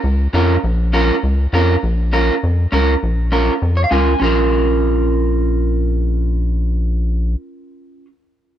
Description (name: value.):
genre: latin, cumbia.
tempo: 202 BPM.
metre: 4/4.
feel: straight.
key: Bb minor.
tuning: A4 = 437 Hz.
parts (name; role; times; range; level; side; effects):
rubbery square bass; bass; 0.0-7.4 s; Bb1 to F2; -16 LUFS; equal; none.
electric guitar at the edge of break-up; accompaniment; 0.3-8.1 s; Db4 to Ab5; -18 LUFS; right 2 dB; none.
room: little or no reverb.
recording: none.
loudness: -14 LUFS.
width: side -11 dB against mid.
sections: 0.0-1.8 A section; 1.8-4.2 B section; 4.2-6.6 C section.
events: clean electric guitar fill 3.6-4.2.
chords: 0.0 Bbm.